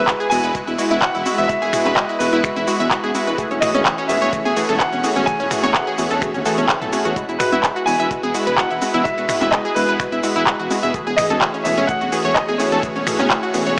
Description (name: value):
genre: progressive house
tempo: 127 BPM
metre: 4/4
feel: straight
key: E major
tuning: A4 = 440 Hz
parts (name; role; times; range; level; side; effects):
- warm grand piano; melody; 0.0-13.8 s; B4 to G#5; -25 LUFS; equal; sidechain pumping, dub echo
- supersaw pad; sustained chords; 0.0-13.8 s; G#3 to C#5; -28 LUFS; equal; sidechain pumping
- unison pluck; stabs; 0.0-13.8 s; E3 to G#4; -26 LUFS; equal; sidechain pumping, dub echo
- dark detuned saw bass; bass; 0.0-13.8 s; E1 to E2; -29 LUFS; equal; sidechain pumping
- twinkling granular texture; texture; 0.2-13.8 s; E4 to F#6; -34 LUFS; equal; none
- electronic kick drum; drums; 0.1-13.4 s; none; -32 LUFS; equal; none
- pop drum kit; drums; 0.1-13.8 s; finger snaps, handclaps, hi-hat, shaker; -24 LUFS; equal; none
- analog pluck; arpeggios; 0.2-13.7 s; C#4 to E6; -25 LUFS; equal; chorus, vintage 12-bit sampler grit, sidechain pumping, dub echo
- electronic congas and toms; percussion; 0.7-13.3 s; none; -31 LUFS; equal; sidechain pumping on toms, sidechain pumping on perc
room: light reverb, digital ambience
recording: small speaker sound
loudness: -18 LUFS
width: mono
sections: 0.0-13.8 A section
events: none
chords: 0.0 Eadd9; 3.4 F#madd9/E; 7.2 Eadd9; 10.9 F#madd9/E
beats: 0.08 0.55 1.02 | 1.49 1.97 2.44 2.91 | 3.38 3.86 4.33 4.80 | 5.27 5.75 6.22 6.69 | 7.16 7.63 8.11 8.58 | 9.05 9.53 10.00 10.47 | 10.94 11.41 11.89 12.36 | 12.83 13.30 13.78